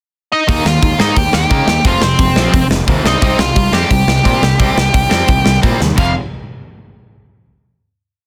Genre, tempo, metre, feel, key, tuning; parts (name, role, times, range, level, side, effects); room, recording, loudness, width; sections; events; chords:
punk rock; 174 BPM; 4/4; straight; A4 = 440 Hz
nasal lead guitar with a parked wah; melody; 0.3-6.1 s; C4 to G5; -18 LUFS; equal; overdrive
crunchy overdriven guitar; riff; 0.5-6.1 s; F2 to Eb4; -19 LUFS; equal
fuzz picked electric bass; bass; 0.5-6.1 s; F1 to Db3; -20 LUFS; equal; overdrive
big rock drum kit; drums; 0.5-6.1 s; crash cymbal, hi-hat, kick drum, snare drum; -17 LUFS; equal
little or no reverb; dense, heavily limited modern master; -13 LUFS; mono
0.0-0.5 pickup bar; 0.5-6.0 verse; 6.0-7.4 final chord
drum fill 5.8
0.5 Eb; 1.8 F5; 3.0 Cm; 6.0 F5